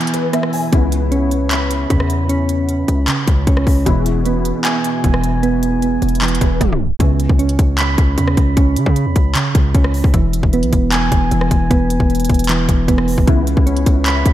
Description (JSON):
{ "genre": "hip hop, trap", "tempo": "153 BPM", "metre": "4/4", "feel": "half-time", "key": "C# minor", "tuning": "A4 = 440 Hz", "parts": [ { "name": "felt-muted upright piano", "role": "accompaniment", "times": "0.0-7.0, 13.3-14.3 s", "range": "B2 to G#5", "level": "-23 LUFS", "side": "left 4 dB", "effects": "ensemble chorus" }, { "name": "soft electric-piano-like synth keys", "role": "arpeggios", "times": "0.0-14.3 s", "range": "C#3 to B5", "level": "-18 LUFS", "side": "right 3 dB", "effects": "chorus, diffuse ambient delay" }, { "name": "trap drum kit", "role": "drums", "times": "0.0-14.3 s", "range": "handclaps, hi-hat, kick drum, rim click", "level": "-17 LUFS", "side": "equal", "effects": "none" }, { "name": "hard-hitting 808-style bass", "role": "bass", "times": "0.7-14.3 s", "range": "E1 to C#3", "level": "-17 LUFS", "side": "equal", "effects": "none" } ], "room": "light reverb", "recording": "tape stop", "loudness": "-13 LUFS", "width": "side -13 dB against mid", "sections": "0.0-7.0 A section; 7.0-14.3 B section", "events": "break 0.0-0.7; tape stop 6.6-7.0", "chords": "0.0 E; 0.7 C#m7; 3.9 E; 7.0 C#7(no3); 10.1 E; 13.3 C#m7", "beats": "0.33 | 0.73 1.12 1.51 1.90 | 2.29 2.69 3.08 3.47 | 3.86 4.25 4.65 5.04 | 5.43 5.82 6.22 6.61 | 7.00 7.39 7.79 8.18 | 8.57 8.96 9.35 9.75 | 10.14 10.53 10.92 11.31 | 11.71 12.10 12.49 12.88 | 13.28 13.67 14.06" }